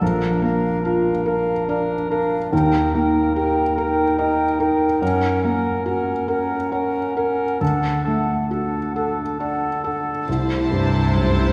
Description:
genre	cinematic, emotional film score for orchestra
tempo	66-73 BPM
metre	3/4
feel	rubato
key	unclear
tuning	A4 = 440 Hz
part	mellow cor anglais	second line	0.0-10.3 s	A4 to A#4	-27 LUFS	equal	none
part	mellow hollow concert flute	second line	0.0-10.3 s	F5 to G5	-29 LUFS	equal	none
part	warm clarinet	second line	0.0-10.3 s	C#4 to Eb4	-27 LUFS	equal	none
part	felt-muted upright piano	accompaniment	0.0-11.5 s	Bb1 to Eb5	-25 LUFS	equal	none
part	warm symphonic violin section	melody	10.3-11.5 s	A5	-33 LUFS	equal	none
part	rich studio violin section	second line	10.3-11.5 s	C5	-31 LUFS	equal	none
part	dark symphonic viola section	accompaniment	10.3-11.5 s	E4	-31 LUFS	equal	none
part	warm French horn section	sustained chords	10.3-11.5 s	A3 to E4	-30 LUFS	equal	none
part	dark symphonic double bass section	bass	10.3-11.5 s	C2	-24 LUFS	equal	none
part	rich symphonic cello section	bass	10.3-11.5 s	C3	-30 LUFS	equal	none
room	wet scoring stage reverb, RT60 1.7 s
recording	heard from further back in the room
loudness	-21 LUFS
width	mono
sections	0.0-10.3 A section; 10.3-11.5 B section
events	none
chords	0.0 Bb; 2.5 Eb; 5.0 F#; 7.6 D; 10.3 C6

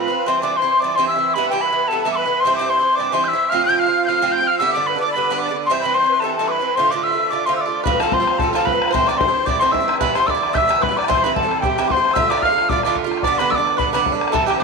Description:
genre	celtic folk, Celtic reel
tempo	222 BPM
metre	4/4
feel	swing 56% on 8ths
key	unclear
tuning	A4 = 440 Hz
part	mellow wooden whistle	melody	0.0-14.6 s	G5 to G6	-18 LUFS	equal	none
part	musette accordion	second line	0.0-14.6 s	G4 to G5	-25 LUFS	left 10 dB	none
part	Irish bouzouki	accompaniment	0.0-14.6 s	G2 to F4	-22 LUFS	right 12 dB	none
part	bluegrass banjo	second line	7.8-14.6 s	G4 to F5	-26 LUFS	right 9 dB	none
part	bodhran	percussion	7.9-14.5 s	none	-24 LUFS	left 7 dB	none
room	wet plate reverb, RT60 3.5 s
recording	1960s-style stereo with parts hard left and right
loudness	-16 LUFS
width	side -4 dB against mid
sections	0.0-7.9 A section; 7.9-14.6 A section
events	none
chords	0.3 C; 1.4 Em; 2.4 C; 3.5 F; 4.6 G; 5.7 C; 6.8 Dm; 7.9 F; 8.9 Am; 10.0 Em; 11.1 C; 12.2 Dm; 13.2 G

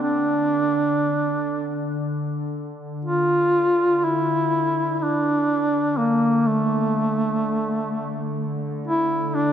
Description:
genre	caucasian folk, Caucasian lament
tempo	free time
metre	none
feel	none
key	D minor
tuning	A4 = 439 Hz
part	warm duduk	melody	0.0-9.5 s	A3 to F4	-20 LUFS	right 1 dB	none
part	warbly tape-like pad	drone	0.0-9.5 s	D3	-28 LUFS	left 2 dB	chorus, built-in reverb
room	wet cathedral reverb, RT60 4.5 s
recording	none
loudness	-20 LUFS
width	side -9 dB against mid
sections	0.0-3.1 A section; 3.1-9.5 B section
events	none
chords	none

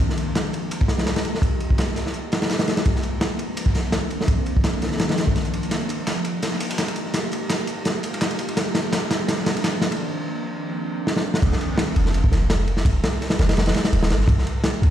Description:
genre	drum and bass, jungle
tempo	168 BPM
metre	4/4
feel	swing 54% on 16ths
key	F minor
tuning	A4 = 440 Hz
part	ethereal airy pad	sustained chords	0.0-11.4 s	Eb3 to G4	-27 LUFS	equal	ensemble chorus, built-in reverb
part	dusty soul sampler-style drum kit	drums	0.0-9.9 s	hi-hat, snare drum	-34 LUFS	equal	overdrive, high-pass filter on hats, high-pass filter on snare, high-pass filter on room
part	crunchy breakbeat drum kit	drums	0.1-14.9 s	crash cymbal, kick drum, ride cymbal, snare drum	-22 LUFS	equal	none
part	warm 808-style bass	bass	11.4-14.9 s	Eb1 to C2	-19 LUFS	equal	none
room	light reverb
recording	played on a big sound system in a bare room, large studio reverb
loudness	-20 LUFS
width	side -11 dB against mid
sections	0.0-11.4 A section; 11.4-14.9 B section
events	build-up 0.0-11.4; filter sweep on ambient pad 0.0-11.4; drum fill 5.7-10.0, 11.1-11.4; break 10.0-11.4; drop 11.4-14.9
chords	0.0 Fm11; 2.9 Cm11; 5.7 Fm11; 8.6 Cm11; 11.4 N.C.

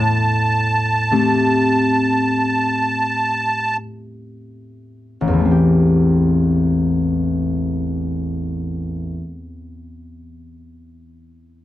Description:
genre	celtic folk, Celtic slow air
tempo	free time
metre	none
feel	none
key	A minor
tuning	A4 = 441 Hz
part	musette accordion	melody	0.0-3.8 s	A5	-18 LUFS	right 1 dB	none
part	concert harp	accompaniment	0.0-9.4 s	A1 to G4	-18 LUFS	left 1 dB	none
room	little or no reverb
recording	dry, close 1970s-style studio recording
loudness	-16 LUFS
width	side -14 dB against mid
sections	0.0-5.4 A section; 5.4-11.4 B section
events	slowing down 0.0-5.4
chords	0.0 Am7

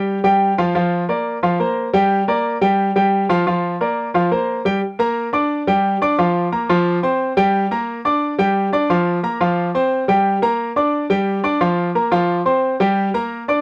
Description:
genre	latin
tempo	177 BPM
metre	4/4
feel	straight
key	G minor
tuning	A4 = 441 Hz
part	clear baby grand piano	solo	0.0-13.6 s	F3 to D6	-18 LUFS	equal	none
room	light reverb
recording	dark, warm production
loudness	-18 LUFS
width	mono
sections	0.0-4.8 A section; 4.8-13.6 B section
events	none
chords	0.1 Fsus2; 0.7 Bb; 1.4 Fsus4; 2.1 Gm; 2.8 Fsus2; 3.5 Bb; 4.1 Fsus4; 4.8 Bb; 5.5 G5; 6.2 Bb5; 6.9 F5; 7.5 Gm; 8.2 G5; 8.9 Bb5; 9.6 F5; 10.3 Gm; 10.9 G5; 11.6 Bb5; 12.3 F5; 13.0 Gm

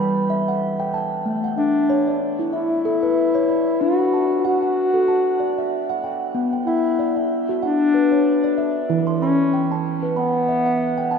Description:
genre	world meditative, meditative tuned percussion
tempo	94 BPM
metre	4/4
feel	swing 56% on 16ths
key	unclear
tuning	A4 = 440 Hz
part	warm bass clarinet	melody	0.0-11.2 s	G3 to F#4	-20 LUFS	left 2 dB	shimmer reverb, tape echo
part	steel tongue drum	arpeggios	0.0-11.2 s	E3 to C6	-22 LUFS	right 2 dB	shimmer reverb
room	wet concert hall reverb, RT60 2.4 s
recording	none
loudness	-18 LUFS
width	side -6 dB against mid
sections	0.0-11.2 A section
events	none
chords	0.0 Em; 1.3 A; 3.8 D; 6.4 Bm; 8.9 Em

